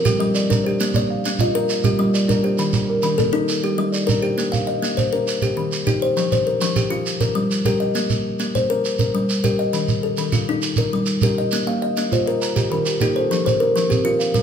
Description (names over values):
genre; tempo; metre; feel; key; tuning
southern african traditional, mbira-style interlocking cycle; 134 BPM (dotted quarters); 12/8; straight; Bb major; A4 = 440 Hz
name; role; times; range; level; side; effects
kalimba; arpeggios; 0.0-14.4 s; Eb3 to F5; -20 LUFS; left 3 dB; none
kalimba; arpeggios; 0.0-4.7, 11.7-14.4 s; Eb3 to Bb5; -24 LUFS; right 4 dB; none
shekere; percussion; 0.1-14.4 s; none; -23 LUFS; right 4 dB; none
room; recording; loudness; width
wet large studio reverb, RT60 1.3 s; band playing live in one room; -17 LUFS; side -8 dB against mid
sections
0.0-4.4 A section; 4.4-14.4 A section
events
none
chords
0.0 Gm; 0.8 Bb; 1.7 Gm; 2.6 Eb; 3.5 Gm; 4.4 Bb5; 5.3 Eb; 6.2 F5; 7.1 Gm; 8.0 Bbsus24; 8.8 Gm; 9.7 Eb; 10.6 Gm; 11.5 Bb5; 12.4 Eb; 13.3 F